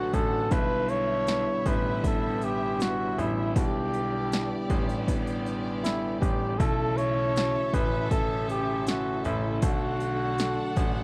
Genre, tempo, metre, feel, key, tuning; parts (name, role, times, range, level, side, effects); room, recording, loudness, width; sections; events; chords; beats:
pop ballad; 79 BPM; 4/4; straight; A4 = 440 Hz
breathy flugelhorn; melody; 0.0-11.0 s; E4 to C#5; -32 LUFS; equal
rich studio violin section; second line; 0.0-11.0 s; B3 to F#5; -41 LUFS; equal
bell-like tine electric piano; accompaniment; 0.0-11.0 s; B2 to D5; -35 LUFS; equal
tonewheel organ; sustained chords; 0.0-11.0 s; C#3 to F#4; -39 LUFS; equal
clear concert grand piano; bass; 0.0-11.0 s; A1 to B1; -35 LUFS; equal
deep house drum kit; drums; 0.1-10.9 s; hi-hat, kick drum, snare drum; -30 LUFS; equal
little or no reverb; dry, close 1970s-style studio recording; -27 LUFS; mono
0.0-11.0 A section
0.0 D; 0.5 Em7; 3.6 G6; 6.6 A; 9.6 D
| 0.52 1.28 2.04 2.80 | 3.56 4.32 5.07 5.83 | 6.59 7.35 8.11 8.87 | 9.63 10.39